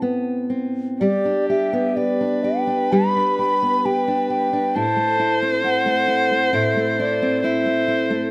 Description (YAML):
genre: celtic folk, Celtic slow air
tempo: 58-68 BPM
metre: 4/4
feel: rubato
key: unclear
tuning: A4 = 441 Hz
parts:
  - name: fingerpicked steel-string acoustic guitar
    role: accompaniment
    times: 0.0-8.3 s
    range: A2 to G4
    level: -24 LUFS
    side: equal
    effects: none
  - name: reedy baroque flute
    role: melody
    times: 1.0-8.1 s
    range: D5 to B5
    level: -24 LUFS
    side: equal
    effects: none
  - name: dark viola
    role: second line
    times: 1.0-8.3 s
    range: G4 to C5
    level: -25 LUFS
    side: equal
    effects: none
room: light reverb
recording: close, detailed microphones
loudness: -20 LUFS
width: mono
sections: 0.0-1.0 A section; 1.0-8.3 B section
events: none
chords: 0.0 Amadd9; 1.0 G; 4.8 Am